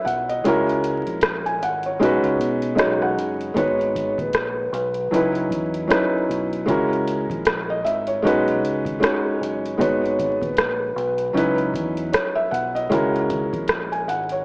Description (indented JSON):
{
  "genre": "lo-fi hip hop",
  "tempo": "77 BPM",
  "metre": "4/4",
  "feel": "swing 59% on 16ths",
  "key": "B major",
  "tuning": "A4 = 439 Hz",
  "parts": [
    { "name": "felt-muted upright piano", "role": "accompaniment", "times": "0.0-14.4 s", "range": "F#3 to G#5", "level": "-20 LUFS", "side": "equal", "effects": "none" },
    { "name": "deep dub fingered electric bass", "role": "bass", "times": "0.1-14.4 s", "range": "F#1 to B2", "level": "-30 LUFS", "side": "equal", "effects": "none" },
    { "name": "booming analog drum machine", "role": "drums", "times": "0.1-14.4 s", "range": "hi-hat, kick drum, rim click", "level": "-24 LUFS", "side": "equal", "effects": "none" },
    { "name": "vibraphone with soft mallets", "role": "melody", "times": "3.6-11.6 s", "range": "B4 to C#5", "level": "-25 LUFS", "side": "equal", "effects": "tape echo" }
  ],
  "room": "light reverb",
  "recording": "worn, warbling old tape, cassette tape, vinyl crackle, warbly pitch drift, small speaker sound",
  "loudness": "-19 LUFS",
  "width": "side -34 dB against mid",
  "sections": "0.0-14.4 A section",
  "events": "break 0.0-3.6; felt piano fill 2.4-3.6",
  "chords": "0.4 F#9; 2.0 B69; 3.6 G#m9; 5.1 C#m11; 6.7 F#9; 8.2 B69; 9.8 G#m9; 11.4 C#m11; 12.9 F#9"
}